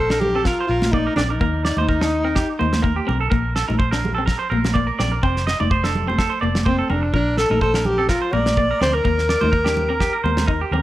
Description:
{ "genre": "highlife guitar band", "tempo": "126 BPM", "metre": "4/4", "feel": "swing 54% on 16ths", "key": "Bb major", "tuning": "A4 = 440 Hz", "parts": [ { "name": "breathy alto saxophone", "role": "melody", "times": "0.0-3.0, 6.7-10.7 s", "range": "C4 to D5", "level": "-21 LUFS", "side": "left 1 dB", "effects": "none" }, { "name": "clean electric guitar", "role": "arpeggios", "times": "0.0-10.8 s", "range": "Eb4 to Eb5", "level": "-24 LUFS", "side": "right 5 dB", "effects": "tape echo" }, { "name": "vintage muted fingered electric bass", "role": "bass", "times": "0.0-10.8 s", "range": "F1 to Eb2", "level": "-24 LUFS", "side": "equal", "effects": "none" }, { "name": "semi-hollow electric guitar", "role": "accompaniment", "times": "0.1-10.8 s", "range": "F3 to Eb4", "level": "-27 LUFS", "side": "left 4 dB", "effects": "none" }, { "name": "damped 70s drum kit", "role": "drums", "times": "0.1-10.6 s", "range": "kick drum, snare drum", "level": "-23 LUFS", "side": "equal", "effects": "none" }, { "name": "congas", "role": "percussion", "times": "0.2-10.8 s", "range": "none", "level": "-27 LUFS", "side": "right 1 dB", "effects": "none" } ], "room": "light reverb, studio ambience", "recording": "none", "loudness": "-17 LUFS", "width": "side -15 dB against mid", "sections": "0.0-10.8 A section", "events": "none", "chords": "0.0 Bb; 1.4 Eb; 3.3 Bb; 5.2 F; 7.1 Bb; 9.1 Eb" }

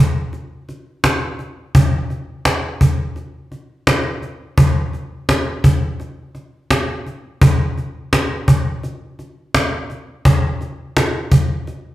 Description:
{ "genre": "blues", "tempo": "85 BPM", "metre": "4/4", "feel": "swing 53% on 16ths", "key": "none", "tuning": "none", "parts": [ { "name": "cajon", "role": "drums", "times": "0.3-11.8 s", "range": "none", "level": "-14 LUFS", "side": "equal", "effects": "none" } ], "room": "wet large studio reverb, RT60 1.1 s", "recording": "band playing live in one room", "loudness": "-15 LUFS", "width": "side -15 dB against mid", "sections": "0.0-11.9 A section", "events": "none", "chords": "none" }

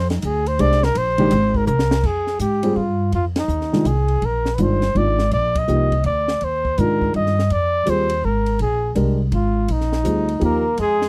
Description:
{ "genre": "modal jazz", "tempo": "165 BPM", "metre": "3/4", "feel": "swing 65% on 8ths", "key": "Bb mixolydian", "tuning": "A4 = 441 Hz", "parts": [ { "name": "breathy trumpet", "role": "melody", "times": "0.0-11.1 s", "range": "Eb4 to Eb5", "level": "-23 LUFS", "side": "equal", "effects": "none" }, { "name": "upright bass", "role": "bass", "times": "0.0-11.1 s", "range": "G1 to Ab2", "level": "-23 LUFS", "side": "equal", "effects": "none" }, { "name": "compact cocktail drum kit", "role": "drums", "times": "0.1-11.1 s", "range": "crash cymbal, hi-hat, kick drum, ride cymbal, snare drum", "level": "-30 LUFS", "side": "equal", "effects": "none" }, { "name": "dark baby grand piano", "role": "accompaniment", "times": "0.6-10.6 s", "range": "Eb3 to C5", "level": "-23 LUFS", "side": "equal", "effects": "none" }, { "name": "trombone with metal mute", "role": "second line", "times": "10.4-11.1 s", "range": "Ab3 to Bb3", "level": "-26 LUFS", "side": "equal", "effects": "none" } ], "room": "little or no reverb", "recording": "dry, close 1970s-style studio recording", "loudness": "-19 LUFS", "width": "mono", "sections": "0.0-2.0 A section; 2.0-11.1 B section", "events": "trumpet solo 0.0-2.0; drum fill 1.7-2.0; band accent 3.3, 5.5", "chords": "0.0 Bb7sus2; 2.0 Bb9sus4" }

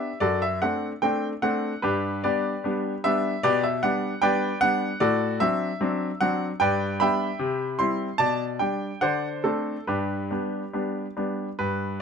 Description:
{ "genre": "classical-period piano sonatina", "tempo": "75 BPM", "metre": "2/4", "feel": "rubato", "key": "G major", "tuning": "A4 = 441 Hz", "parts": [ { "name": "bright grand piano", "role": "solo", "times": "0.0-12.0 s", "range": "F#2 to C6", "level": "-23 LUFS", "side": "equal", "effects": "none" } ], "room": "light reverb", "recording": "dark, warm production", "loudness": "-23 LUFS", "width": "side -6 dB against mid", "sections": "0.0-11.6 A section", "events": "none", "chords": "0.2 D7/F#; 1.8 G; 3.4 G/B; 5.0 D7/A; 6.6 G; 7.4 C; 8.2 G/B; 9.0 D7; 9.9 G" }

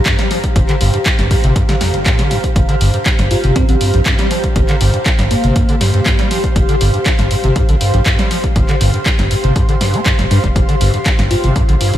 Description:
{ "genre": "acid house", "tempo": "120 BPM", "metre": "4/4", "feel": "straight", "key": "G minor pentatonic", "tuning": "A4 = 439 Hz", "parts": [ { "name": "granular cloud pad", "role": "texture", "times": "0.0-12.0 s", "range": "G4 to C6", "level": "-20 LUFS", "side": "equal", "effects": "built-in reverb, sidechain pumping" }, { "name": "overdriven acid bass", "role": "riff", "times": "0.1-12.0 s", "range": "G1 to Bb3", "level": "-17 LUFS", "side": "equal", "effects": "ensemble chorus, sidechain pumping, analog delay" }, { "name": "electronic kick drum", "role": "drums", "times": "0.1-11.7 s", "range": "none", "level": "-15 LUFS", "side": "equal", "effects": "none" }, { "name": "punchy analog drum machine", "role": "drums", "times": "0.1-12.0 s", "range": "handclaps, hi-hat, snare drum", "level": "-20 LUFS", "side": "equal", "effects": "none" }, { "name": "saturated sub bass", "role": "bass", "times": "0.6-12.0 s", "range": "F1 to G2", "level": "-16 LUFS", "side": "equal", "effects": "sidechain pumping" }, { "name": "bell-like FM electric piano", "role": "melody", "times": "3.3-5.8, 11.3-11.5 s", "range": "Bb3 to F4", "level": "-22 LUFS", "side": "left 1 dB", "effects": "chorus, phaser, ping-pong delay" } ], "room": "light reverb", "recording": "none", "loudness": "-11 LUFS", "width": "side -12 dB against mid", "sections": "0.0-12.0 A section", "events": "none", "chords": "0.0 Gm" }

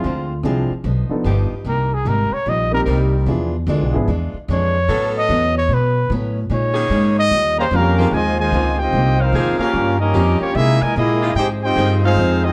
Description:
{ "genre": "jazz", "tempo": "148 BPM", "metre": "4/4", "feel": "swing 65% on 8ths", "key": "Ab major", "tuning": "A4 = 440 Hz", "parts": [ { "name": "breathy trumpet", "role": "melody", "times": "0.0-8.1 s", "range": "F4 to Eb5", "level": "-22 LUFS", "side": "equal", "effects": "none" }, { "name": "picked old ladder-braced acoustic guitar", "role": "accompaniment", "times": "0.0-12.5 s", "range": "G2 to Ab4", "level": "-30 LUFS", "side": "equal", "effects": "none" }, { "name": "warm grand piano", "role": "accompaniment", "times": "0.0-4.1, 8.0-8.1 s", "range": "F3 to A4", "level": "-25 LUFS", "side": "equal", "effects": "none" }, { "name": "upright bass", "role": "bass", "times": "0.0-12.5 s", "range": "G1 to C3", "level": "-21 LUFS", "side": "equal", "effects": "none" }, { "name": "bright saxophone section", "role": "sustained chords", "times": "1.3-12.4 s", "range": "Eb3 to Bb4", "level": "-28 LUFS", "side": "equal", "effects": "none" }, { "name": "warm trumpet section", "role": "melody", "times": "7.6-12.5 s", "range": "Bb3 to Bb5", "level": "-22 LUFS", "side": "equal", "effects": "none" }, { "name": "clear trombone section", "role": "second line", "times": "7.6-12.5 s", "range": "Bb2 to G4", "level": "-25 LUFS", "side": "equal", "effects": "none" } ], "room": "light reverb", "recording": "dark, warm production", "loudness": "-18 LUFS", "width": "mono", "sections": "0.0-8.1 A section; 8.1-12.5 B section", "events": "trumpet solo 0.0-8.1", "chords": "0.0 Dm7b5; 0.8 G7b13; 1.7 Cm7; 3.3 E7b9; 4.9 A69; 6.5 Bbm7; 7.3 Eb9; 8.1 Ab69; 9.7 Gm7b5; 10.6 C7alt; 11.4 Fm7" }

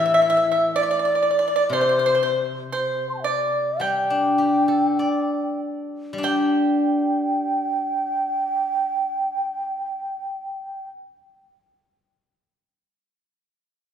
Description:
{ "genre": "chinese traditional, Chinese chamber ensemble", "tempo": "46-65 BPM", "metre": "4/4", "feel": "rubato", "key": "G zhi mode", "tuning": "A4 = 438 Hz", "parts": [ { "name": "mellow hollow xiao", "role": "melody", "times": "0.0-10.9 s", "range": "C5 to C6", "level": "-22 LUFS", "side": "equal", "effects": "none" }, { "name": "pipa", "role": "second line", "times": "0.0-10.9 s", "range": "C5 to G5", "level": "-24 LUFS", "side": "right 2 dB", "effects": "none" }, { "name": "steel-string zither", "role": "accompaniment", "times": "0.0-12.2 s", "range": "A2 to D5", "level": "-24 LUFS", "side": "left 1 dB", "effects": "none" } ], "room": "wet recital hall reverb, RT60 1.6 s", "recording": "recorded in a church or concert hall", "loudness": "-20 LUFS", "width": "side -8 dB against mid", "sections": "0.0-6.2 A section; 6.2-11.3 B section", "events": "slowing down 0.0-6.2", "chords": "none" }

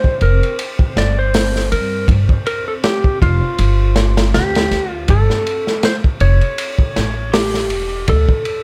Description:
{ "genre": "trip hop", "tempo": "80 BPM", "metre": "4/4", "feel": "swing 56% on 16ths", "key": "unclear", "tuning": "A4 = 440 Hz", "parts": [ { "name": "clean lap steel guitar", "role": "melody", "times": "0.0-8.6 s", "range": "F4 to D5", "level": "-22 LUFS", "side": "equal", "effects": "vintage 12-bit sampler grit, tape echo" }, { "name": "crunchy breakbeat drum kit", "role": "drums", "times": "0.0-8.6 s", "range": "hi-hat, kick drum, ride cymbal, snare drum", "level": "-20 LUFS", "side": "equal", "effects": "none" }, { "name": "bowed-like drone", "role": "texture", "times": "0.0-5.1 s", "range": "C4", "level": "-34 LUFS", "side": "equal", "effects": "built-in reverb" }, { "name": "upright bass", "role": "bass", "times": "0.2-8.3 s", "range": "E1 to G2", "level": "-18 LUFS", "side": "equal", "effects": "tube saturation" } ], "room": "small room reverb", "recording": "none", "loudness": "-16 LUFS", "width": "mono", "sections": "0.0-5.1 A section; 5.1-8.6 B section", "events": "none", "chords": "0.0 G5; 5.1 Gsus2; 6.6 A7; 8.1 D5" }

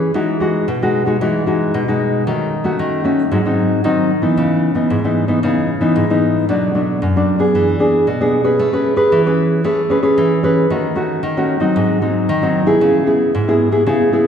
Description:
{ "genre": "samba", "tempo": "114 BPM", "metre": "4/4", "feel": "straight", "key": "E major", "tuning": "A4 = 440 Hz", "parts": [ { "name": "nylon-string guitar", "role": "solo", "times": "0.0-14.3 s", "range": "F#2 to B4", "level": "-13 LUFS", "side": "equal", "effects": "none" } ], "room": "wet recital hall reverb, RT60 1.7 s", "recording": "recorded in a church or concert hall", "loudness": "-13 LUFS", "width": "side -8 dB against mid", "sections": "0.1-14.3 A section", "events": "none", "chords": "0.1 Emaj9; 2.3 D#m7b5; 3.3 G#7; 4.4 C#m9; 6.5 Bm7; 7.5 E7; 8.6 Amaj9; 10.7 D#m7b5; 11.8 G#7; 12.8 C#m7" }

